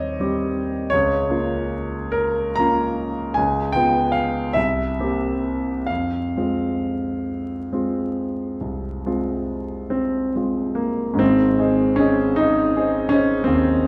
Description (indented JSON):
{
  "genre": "classical, romantic nocturne for solo piano",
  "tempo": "43-57 BPM (dotted quarters)",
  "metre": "12/8",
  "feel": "rubato",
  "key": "F minor",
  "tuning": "A4 = 440 Hz",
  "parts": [
    { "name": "clear concert grand piano", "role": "solo", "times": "0.0-13.9 s", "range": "Ab1 to Bb5", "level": "-21 LUFS", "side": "equal", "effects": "none" }
  ],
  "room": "wet recital hall reverb, RT60 1.5 s",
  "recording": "vinyl crackle, lossy compression artefacts",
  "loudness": "-22 LUFS",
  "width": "mono",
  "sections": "0.0-11.2 A section; 11.2-13.9 B section",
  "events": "none",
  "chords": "0.0 Cm/Eb; 0.9 Bbm/Db; 3.4 Db7; 4.6 C7; 5.9 Fm; 11.2 Ab",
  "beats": "| 0.93 2.16 3.37 4.57 | 5.89 7.28 8.61 9.93 | 11.21 12.37 13.46"
}